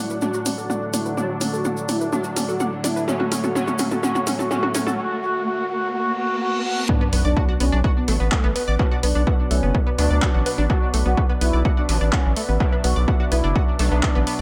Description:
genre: melodic techno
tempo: 126 BPM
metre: 4/4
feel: straight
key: B minor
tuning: A4 = 440 Hz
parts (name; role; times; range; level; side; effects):
- expressive synth lead; melody; 0.0-14.4 s; A3 to F#4; -29 LUFS; equal; lush chorus, sidechain pumping, dub echo
- deep dark ambient pad; sustained chords; 0.0-14.4 s; D3 to F#5; -36 LUFS; equal; chorus, built-in reverb, sidechain pumping
- sync-sweep polysynth; stabs; 0.0-14.4 s; A2 to D4; -32 LUFS; equal; subtle chorus, cassette tape, sidechain pumping, dub echo
- riser, reverse cymbal and sub drop; sound effects; 1.8-8.8 s; none; -34 LUFS; equal; none
- tight sequenced synth; arpeggios; 0.1-14.4 s; A3 to D6; -31 LUFS; equal; chorus, sidechain pumping, dub echo
- tube shaker; percussion; 0.1-5.0 s; none; -36 LUFS; equal; none
- punchy analog drum machine; drums; 0.2-14.4 s; handclaps, hi-hat, toms; -29 LUFS; equal; overdrive, sidechain pumping on hats, studio reverb, sidechain pumping on toms
- electronic kick drum; drums; 6.9-14.1 s; none; -22 LUFS; equal; overdrive, studio reverb
- round analog bass; bass; 7.1-14.4 s; F#1 to D2; -22 LUFS; equal; sidechain pumping
room: moderate spring reverb, RT60 2.0 s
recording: echo-heavy mix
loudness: -21 LUFS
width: mono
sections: 0.0-6.9 A section; 6.9-14.4 B section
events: build-up 0.0-6.9; drum fill 0.0-5.0; filter sweep on synth arpeggio sound 0.0-6.9; filter sweep on analog synth lead 0.0-6.9; riser 1.8-6.9; reverse cymbal 5.9-6.9; drop 6.9-14.4; impact 6.9-8.8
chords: 0.0 D; 3.1 A; 6.9 Bm

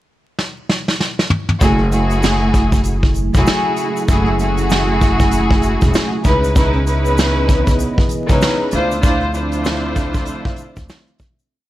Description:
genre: hip hop, boom-bap hip-hop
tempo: 97 BPM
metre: 4/4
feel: swing 60% on 16ths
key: F# minor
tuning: A4 = 438 Hz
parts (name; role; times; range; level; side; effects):
- vintage brush drum kit; drums; 0.4-11.5 s; hi-hat, kick drum, snare drum, toms; -16 LUFS; equal; none
- rich studio string section; accompaniment; 1.6-11.1 s; A3 to C5; -18 LUFS; equal; cassette tape, high-pass filter, low-pass filter
- dark analog pad; sustained chords; 2.6-11.5 s; C#3 to E5; -24 LUFS; right 1 dB; chorus, high-pass filter, low-pass filter
- upright bass; bass; 1.6-10.9 s; E1 to D2; -19 LUFS; equal; none
- egg shaker; percussion; 1.6-11.5 s; none; -36 LUFS; left 6 dB; none
room: small room reverb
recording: vinyl crackle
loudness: -13 LUFS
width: side -15 dB against mid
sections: 0.0-1.6 pickup bar; 1.6-11.5 hook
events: drum fill 0.4-1.6; fade-out 9.0-11.5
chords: 0.0 N.C.; 1.6 F#m9; 6.2 C#m9; 8.7 Dm9

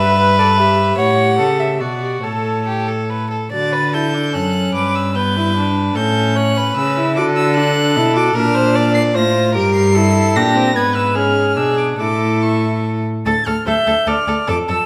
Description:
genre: quick classical-period movement for string quartet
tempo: 149 BPM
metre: 3/4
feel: rubato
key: D major, D minor from 8.4 s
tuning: A4 = 440 Hz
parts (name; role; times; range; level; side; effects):
- rich violin; melody; 0.0-14.9 s; C#5 to D7; -24 LUFS; equal; none
- warm violin; second line; 0.0-14.8 s; F#4 to D5; -21 LUFS; equal; none
- warm viola; accompaniment; 0.0-14.9 s; B3 to E5; -22 LUFS; equal; none
- warm cello; bass; 0.0-14.8 s; D2 to D3; -21 LUFS; equal; none
room: wet recital hall reverb, RT60 1.4 s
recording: none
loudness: -16 LUFS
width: mono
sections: 0.0-3.5 A section; 3.5-13.3 B section; 13.3-14.9 C section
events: none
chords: 0.0 Em/G; 1.0 A7; 1.8 Bm; 2.2 A; 3.5 D; 4.7 Em/G; 6.0 A7; 7.2 D; 8.4 Bb; 9.6 Gm; 10.8 G#dim7; 12.0 A; 13.3 Dm

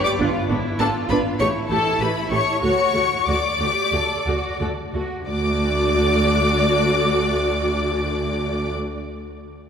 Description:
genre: quick classical-period movement for string orchestra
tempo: 88-102 BPM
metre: 4/4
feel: rubato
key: D major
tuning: A4 = 440 Hz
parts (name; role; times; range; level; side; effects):
- rich chamber violin section; melody; 0.0-8.7 s; A5 to D6; -24 LUFS; left 4 dB; none
- warm studio violin section; second line; 0.0-8.7 s; A4 to D5; -25 LUFS; left 2 dB; none
- warm chamber cello section; bass; 0.0-8.7 s; D2 to A4; -28 LUFS; right 2 dB; none
- warm studio viola section; accompaniment; 0.2-8.7 s; A3 to G4; -24 LUFS; right 1 dB; none
- clear studio double bass section; bass; 0.2-8.7 s; G#1 to D2; -26 LUFS; right 2 dB; none
room: wet church reverb, RT60 3.2 s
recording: recorded in a church or concert hall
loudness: -18 LUFS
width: side -7 dB against mid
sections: 0.0-5.3 A section; 5.3-8.0 B section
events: slowing down 0.0-5.3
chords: 0.2 G#dim7; 1.4 A5; 2.6 D

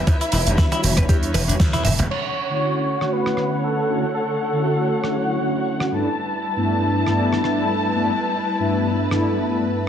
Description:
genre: nu-disco, nu disco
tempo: 118 BPM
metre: 4/4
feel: swing 55% on 16ths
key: D major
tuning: A4 = 439 Hz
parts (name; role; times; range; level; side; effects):
- dark studio string section; sustained chords; 0.0-9.9 s; D3 to A5; -25 LUFS; left 1 dB; sidechain pumping, low-pass filter
- slap bass; bass; 0.0-2.1 s; E1 to E2; -23 LUFS; equal; none
- damped 70s drum kit; drums; 0.1-9.2 s; crash cymbal, hi-hat, rim click, snare drum, toms; -25 LUFS; right 2 dB; low-pass filter on hats, low-pass filter on toms, low-pass filter on cymbals, low-pass filter on snare, low-pass filter on room
- electronic kick drum; drums; 0.1-1.7 s; none; -17 LUFS; equal; none
- congas and cabasa; percussion; 0.1-2.1 s; none; -29 LUFS; right 3 dB; none
- direct-recorded clean electric guitar; riff; 0.2-2.0 s; E3 to E5; -27 LUFS; left 1 dB; wide subtle chorus, vintage 12-bit sampler grit, low-pass filter, slapback echo
- mellow synth brass; accompaniment; 0.5-9.9 s; G2 to F#4; -22 LUFS; equal; chorus, sidechain pumping, slapback echo
- wide unison lead; melody; 2.1-5.9 s; F#4 to C#5; -24 LUFS; equal; tape echo
room: wet echo chamber reverb, RT60 1.9 s, studio ambience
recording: dense, heavily limited modern master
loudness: -18 LUFS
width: side -9 dB against mid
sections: 0.0-2.1 A section; 2.1-9.9 B section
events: band accent 1.6; drum fill 1.7-2.1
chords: 0.0 Em7; 2.1 Dmaj7; 5.9 G69

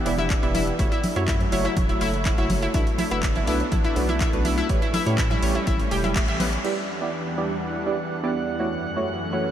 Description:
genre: progressive house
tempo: 123 BPM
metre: 4/4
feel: straight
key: E dorian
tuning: A4 = 440 Hz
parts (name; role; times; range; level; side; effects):
- supersaw pad; sustained chords; 0.0-9.5 s; E2 to F#5; -29 LUFS; equal; sidechain pumping
- analog pluck; arpeggios; 0.1-6.4 s; B3 to E5; -29 LUFS; left 1 dB; chorus, sidechain pumping, diffuse ambient delay
- deep mellow chord stab; stabs; 0.1-9.5 s; A3 to E5; -28 LUFS; right 2 dB; chorus, sidechain pumping, diffuse ambient delay
- saturated sub bass; bass; 0.1-6.6 s; E1 to A2; -28 LUFS; equal; sidechain pumping
- house drum kit; drums; 0.1-6.7 s; crash cymbal, handclaps, hi-hat; -33 LUFS; left 1 dB; sidechain pumping on hats, sidechain pumping on cymbals
- cowbell and congas; percussion; 0.1-6.5 s; none; -33 LUFS; equal; none
- electronic kick drum; drums; 0.3-6.3 s; none; -25 LUFS; equal; none
- drifting glass-harmonics texture; texture; 7.3-9.5 s; F#6; -38 LUFS; right 3 dB; chorus, built-in reverb, sidechain pumping
room: moderate huge ambient reverb, RT60 7.5 s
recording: dreamy mix soaked in reverb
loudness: -21 LUFS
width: side -10 dB against mid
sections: 0.0-6.6 A section; 6.6-9.5 B section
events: filter sweep on supersaw synth 0.0-6.6; band accent 6.2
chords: 0.0 Em7; 0.8 F#m7; 2.7 Bm7; 4.7 A7; 6.6 Em7; 8.6 F#m7

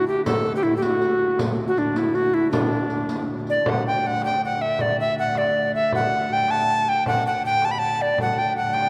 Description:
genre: medieval dance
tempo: 106 BPM (dotted quarters)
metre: 6/8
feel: straight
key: D major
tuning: A4 = 439 Hz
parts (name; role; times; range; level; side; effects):
- bright tenor recorder; melody; 0.0-8.9 s; D4 to B5; -23 LUFS; equal; none
- warm viola da gamba; drone; 0.0-8.9 s; D2; -35 LUFS; equal; none
- frame drum; percussion; 0.3-8.9 s; none; -31 LUFS; equal; none
- riq; percussion; 0.3-3.6 s; none; -36 LUFS; equal; none
room: wet cathedral reverb, RT60 4.8 s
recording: recorded in a church or concert hall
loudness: -22 LUFS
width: mono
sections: 0.0-3.7 A section; 3.7-8.9 B section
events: none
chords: none

